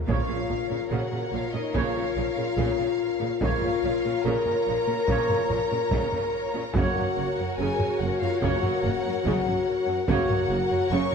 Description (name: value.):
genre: cinematic, epic orchestral film score.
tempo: 72 BPM.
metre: 4/4.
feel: straight.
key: Bb minor.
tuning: A4 = 440 Hz.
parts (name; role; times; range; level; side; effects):
warm symphonic violin section; melody; 0.1-11.1 s; Eb5 to Db6; -34 LUFS; left 4 dB; none.
warm symphonic violin section; second line; 0.1-11.1 s; Bb4 to Db5; -33 LUFS; left 3 dB; none.
warm symphonic viola section; accompaniment; 0.1-11.1 s; Db3 to Gb4; -33 LUFS; right 3 dB; none.
clear trombone section; sustained chords; 0.1-10.4 s; F3 to Bb3; -38 LUFS; right 5 dB; none.
mellow French horn section; sustained chords; 0.1-11.1 s; Eb4 to Db5; -27 LUFS; left 4 dB; none.
warm trumpet section; stabs; 0.1-10.4 s; Db5; -36 LUFS; right 3 dB; none.
clear studio double bass section; bass; 0.1-11.0 s; Gb1 to Bb1; -33 LUFS; right 4 dB; none.
rich symphonic cello section; bass; 0.1-11.0 s; Gb2 to Bb2; -33 LUFS; right 5 dB; none.
taiko ensemble; drums; 0.1-11.1 s; none; -31 LUFS; equal; none.
timpani; percussion; 0.1-1.3 s; Bb2; -38 LUFS; equal; none.
room: moderate concert hall reverb, RT60 2.1 s.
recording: none.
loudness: -23 LUFS.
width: side -6 dB against mid.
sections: 0.1-11.1 A section.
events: none.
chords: 0.1 Bbm; 6.8 Gb.